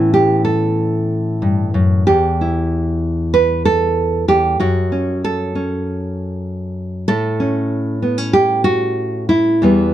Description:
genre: folk, solo fingerstyle acoustic guitar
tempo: 95 BPM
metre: 4/4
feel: rubato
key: unclear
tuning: A4 = 440 Hz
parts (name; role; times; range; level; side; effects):
- nylon-string guitar; solo; 0.0-9.9 s; E2 to B4; -14 LUFS; equal; none
room: light reverb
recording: dark, warm production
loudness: -15 LUFS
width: side -12 dB against mid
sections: 0.0-9.9 A section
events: none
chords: 0.0 Aadd9; 2.1 N.C.; 4.6 F#m; 7.1 A

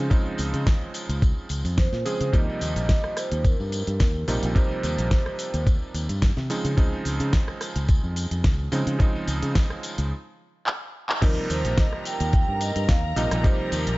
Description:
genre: nu-disco, nu disco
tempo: 108 BPM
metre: 4/4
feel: swing 54% on 16ths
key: Eb mixolydian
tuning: A4 = 440 Hz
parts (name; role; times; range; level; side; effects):
- warm electric grand piano; accompaniment; 0.0-14.0 s; C3 to Ab4; -30 LUFS; right 2 dB; slapback echo
- fingered electric bass; bass; 0.0-14.0 s; Bb1 to Db3; -26 LUFS; equal; none
- electronic kick drum; drums; 0.1-13.6 s; none; -20 LUFS; equal; none
- pop drum kit; drums; 0.1-14.0 s; cabasa, crash cymbal, handclaps, hi-hat, rim click, snare drum; -31 LUFS; equal; none
- tambourine; percussion; 0.1-14.0 s; none; -40 LUFS; left 5 dB; none
- vibraphone with soft mallets; melody; 1.8-5.6, 11.2-14.0 s; Bb4 to G5; -30 LUFS; right 1 dB; analog delay
- dark chamber string section; sustained chords; 11.2-14.0 s; Bb4 to Bb5; -34 LUFS; equal; sidechain pumping
room: digital ambience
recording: nothing above 7.7 kHz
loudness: -21 LUFS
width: side -20 dB against mid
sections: 0.0-11.2 A section; 11.2-14.0 B section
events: break 10.1-11.2; drum fill 10.7-11.2; band accent 11.1; drop 11.2-14.0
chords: 0.0 Dbmaj9; 2.3 Eb6; 6.5 Dbmaj9; 11.2 Eb6

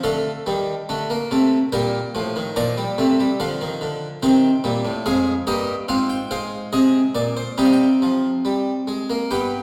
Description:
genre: classical, baroque-style 4-part fugue for harpsichord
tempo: 71 BPM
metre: 3/4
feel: straight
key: C minor from 5.1 s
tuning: A4 = 441 Hz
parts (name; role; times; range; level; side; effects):
- harpsichord; solo; 0.0-9.6 s; F2 to Bb5; -21 LUFS; equal; none
room: wet recital hall reverb, RT60 1.3 s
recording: heard from further back in the room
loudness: -21 LUFS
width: mono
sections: 0.0-9.6 A section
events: none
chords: 0.0 Dm; 1.7 Bb5; 2.6 Eb/Bb; 4.2 Cm; 5.1 Fm; 7.6 Cm

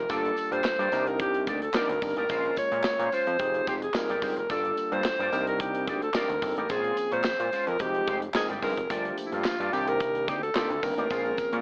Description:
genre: early-eighties boogie funk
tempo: 109 BPM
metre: 4/4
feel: straight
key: unclear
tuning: A4 = 441 Hz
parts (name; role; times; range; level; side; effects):
- breathy alto saxophone; melody; 0.0-11.6 s; E4 to Db5; -31 LUFS; equal; slapback echo
- fat analog bass; bass; 0.0-11.6 s; F1 to Bb2; -36 LUFS; equal; none
- barky tine electric piano; accompaniment; 0.1-11.6 s; Eb3 to Bb4; -36 LUFS; equal; overdrive
- electric guitar with an envelope filter; riff; 0.1-11.6 s; Ab3 to F5; -37 LUFS; equal; analog chorus
- modern studio drum kit; drums; 0.1-11.6 s; handclaps, hi-hat, kick drum, snare drum; -35 LUFS; equal; none
- tambourine; percussion; 0.1-11.5 s; none; -53 LUFS; equal; none
room: small room ambience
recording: AM radio sound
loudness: -28 LUFS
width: mono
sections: 0.0-11.6 A section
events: none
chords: 0.1 Gm9; 0.9 Cm9; 2.3 Bbm9; 3.4 Fm9; 4.5 Gm9; 5.3 Cm9; 6.7 Bbm9; 7.8 Fm9; 8.9 Gm9; 9.7 Cm9; 11.1 Bbm9

